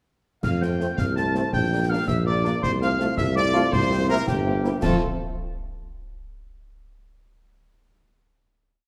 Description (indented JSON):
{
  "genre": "military-style march for wind band",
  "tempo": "109 BPM (dotted quarters)",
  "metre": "6/8",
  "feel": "straight",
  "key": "F major",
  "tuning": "A4 = 438 Hz",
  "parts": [
    { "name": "bright trumpet section", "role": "melody", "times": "0.4-5.0 s", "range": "G4 to A5", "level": "-31 LUFS", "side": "equal", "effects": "none" },
    { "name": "wooden piccolo", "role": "second line", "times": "0.4-5.0 s", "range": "G5 to A6", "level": "-31 LUFS", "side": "equal", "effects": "none" },
    { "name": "warm tuba", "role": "bass", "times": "0.4-5.0 s", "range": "G1 to F2", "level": "-26 LUFS", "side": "equal", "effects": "none" },
    { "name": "concert snare drum, clash cymbals and concert bass drum", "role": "drums", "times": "0.4-5.0 s", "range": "none", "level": "-32 LUFS", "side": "equal", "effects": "none" },
    { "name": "mellow French horn section", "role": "accompaniment", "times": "0.6-5.0 s", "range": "A3 to C5", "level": "-34 LUFS", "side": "equal", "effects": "none" },
    { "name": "bright trombone section", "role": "sustained chords", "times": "0.8-5.0 s", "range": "A3 to F4", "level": "-34 LUFS", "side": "equal", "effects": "none" }
  ],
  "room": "wet recital hall reverb, RT60 1.6 s",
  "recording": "dark, warm production",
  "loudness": "-23 LUFS",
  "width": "mono",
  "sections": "0.4-4.8 A section; 4.8-5.9 final chord",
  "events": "none",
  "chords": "0.4 F; 1.5 Gm/Bb; 2.6 F/C; 3.7 C7; 4.8 F"
}